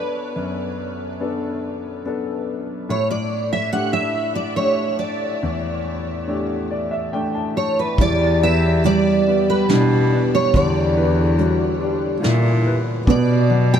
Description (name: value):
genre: acoustic folk-pop ballad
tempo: 71 BPM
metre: 3/4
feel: straight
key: unclear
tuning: A4 = 439 Hz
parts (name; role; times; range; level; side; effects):
- picked steel-string acoustic guitar; melody; 0.0-13.8 s; B4 to G5; -22 LUFS; right 2 dB; analog chorus
- warm grand piano; accompaniment; 0.0-13.8 s; E2 to A5; -24 LUFS; left 2 dB; lush chorus
- mellow French horn; second line; 8.0-13.8 s; E4 to G4; -24 LUFS; left 4 dB; none
- warm cello; bass; 8.0-13.8 s; E2 to B2; -19 LUFS; left 1 dB; none
- soft brush drum kit; drums; 8.0-13.3 s; hi-hat, kick drum, snare drum; -22 LUFS; equal; none
- felt-muted upright piano; arpeggios; 8.8-13.8 s; G3 to A4; -23 LUFS; right 6 dB; analog chorus, analog delay
room: moderate huge ambient reverb, RT60 8.0 s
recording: dreamy mix soaked in reverb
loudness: -17 LUFS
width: side -8 dB against mid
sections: 0.0-8.0 A section; 8.0-13.8 B section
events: none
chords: 0.0 Bm7; 2.9 A7sus4; 8.0 Em7; 13.1 Bm7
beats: | 0.34 1.19 2.04 | 2.88 3.72 4.57 | 5.42 6.27 7.12 | 7.98 8.84 9.69 | 10.54 11.38 12.23 | 13.08